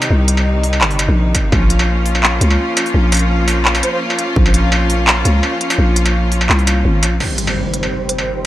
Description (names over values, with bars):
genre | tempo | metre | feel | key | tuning
half-time drum and bass | 169 BPM | 4/4 | half-time | unclear | A4 = 438 Hz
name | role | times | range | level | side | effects
bright symphonic string section | sustained chords | 0.0-8.5 s | C3 to G4 | -19 LUFS | equal | sidechain pumping, low-pass filter
industrial drum kit | drums | 0.0-8.3 s | crash cymbal, handclaps, hi-hat, struck metal | -17 LUFS | equal | none
growling 808-style bass | bass | 0.1-7.2 s | G1 to Db2 | -14 LUFS | equal | none
electronic kick drum | drums | 1.3-1.6, 4.4 s | none | -15 LUFS | equal | none
concert flute | melody | 3.8-4.0 s | C5 | -28 LUFS | right 1 dB | none
impact | sound effects | 7.2-8.5 s | none | -22 LUFS | equal | none
flickering grainy texture | texture | 7.5-8.5 s | C5 | -24 LUFS | right 3 dB | built-in reverb
room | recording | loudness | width
light reverb, digital ambience | dry, gritty hardware recording | -12 LUFS | side -14 dB against mid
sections
0.0-7.2 A section; 7.2-8.5 B section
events
impact 7.2-8.5; filter sweep on string section 7.2-8.5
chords
0.0 Cm; 1.5 Bbm; 7.2 Cm